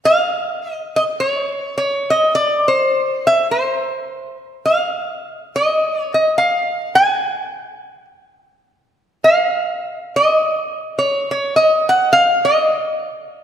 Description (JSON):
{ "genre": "hawaiian", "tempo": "105 BPM", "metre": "4/4", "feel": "swing 59% on 8ths", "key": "unclear", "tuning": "A4 = 444 Hz", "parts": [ { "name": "lap resonator guitar", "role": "solo", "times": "0.1-13.0 s", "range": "C5 to Ab5", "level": "-15 LUFS", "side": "equal", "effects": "none" } ], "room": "wet concert hall reverb, RT60 1.9 s", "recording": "none", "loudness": "-15 LUFS", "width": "side -9 dB against mid", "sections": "0.0-13.4 A section", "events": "none", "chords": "none", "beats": "| 0.03 0.61 1.18 1.76 | 2.33 2.91 3.48 4.06 | 4.63 5.21 5.78 6.36 | 6.93 7.50 8.08 8.65 | 9.22 9.79 10.37 10.94 | 11.51 12.09 12.66" }